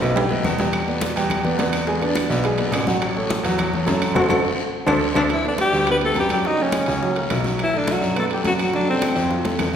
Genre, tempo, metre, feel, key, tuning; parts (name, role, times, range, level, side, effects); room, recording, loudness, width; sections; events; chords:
Afro-Cuban jazz; 210 BPM; 4/4; straight; E minor, G major from 5.3 s; A4 = 440 Hz
warm upright piano; accompaniment; 0.0-9.8 s; F3 to G#5; -24 LUFS; right 2 dB
warm baby grand piano; bass; 0.0-9.8 s; F#1 to F#2; -25 LUFS; left 1 dB
bongos; percussion; 0.0-9.7 s; -31 LUFS; left 3 dB
congas; percussion; 0.0-9.8 s; -29 LUFS; equal
guiro; percussion; 0.0-9.8 s; -34 LUFS; left 3 dB
timbales; percussion; 0.2-9.7 s; -31 LUFS; right 4 dB
claves; percussion; 0.4-9.7 s; -33 LUFS; right 1 dB
warm trombone; second line; 1.9-2.2, 4.2-9.8 s; C3 to F#4; -27 LUFS; left 2 dB
clear alto saxophone; melody; 5.3-9.4 s; C4 to B4; -21 LUFS; left 1 dB
wet scoring stage reverb, RT60 1.8 s; recorded in a church or concert hall; -18 LUFS; side -8 dB against mid
0.0-5.3 A section; 5.3-9.8 B section
trombone solo 0.0-5.3; drum fill 0.2-0.7, 4.2-5.3, 9.4-9.8; band accent 4.2-5.3
0.2 Baug; 0.7 Em7; 1.9 E9; 3.0 A6; 4.2 F#dim; 4.7 D5; 5.3 G; 6.4 F#; 7.6 B5; 8.7 F#dim